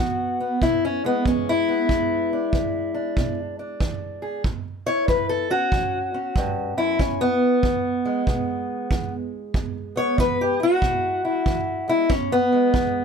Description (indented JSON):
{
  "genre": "acoustic country blues, solo or duo",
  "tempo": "94 BPM",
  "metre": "4/4",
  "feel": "swing 64% on 8ths",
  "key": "E mixolydian",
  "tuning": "A4 = 440 Hz",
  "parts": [
    { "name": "fingerpicked steel-string acoustic guitar", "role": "melody", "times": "0.0-13.0 s", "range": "E2 to C#5", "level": "-21 LUFS", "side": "left 1 dB", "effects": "none" },
    { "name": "kick drum", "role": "drums", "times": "0.6-12.9 s", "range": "none", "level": "-26 LUFS", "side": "right 2 dB", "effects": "none" }
  ],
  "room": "little or no reverb",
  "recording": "close, detailed microphones",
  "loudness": "-20 LUFS",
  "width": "side -6 dB against mid",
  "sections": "0.0-13.0 A section",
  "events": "steel-string acoustic guitar solo 0.0-13.0",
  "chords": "0.0 E7; 4.4 A; 7.0 E",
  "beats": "0.61 1.25 | 1.89 2.53 3.17 3.81 | 4.44 5.08 5.72 6.36 | 7.00 7.64 8.28 8.91 | 9.55 10.19 10.83 11.47 | 12.11 12.75"
}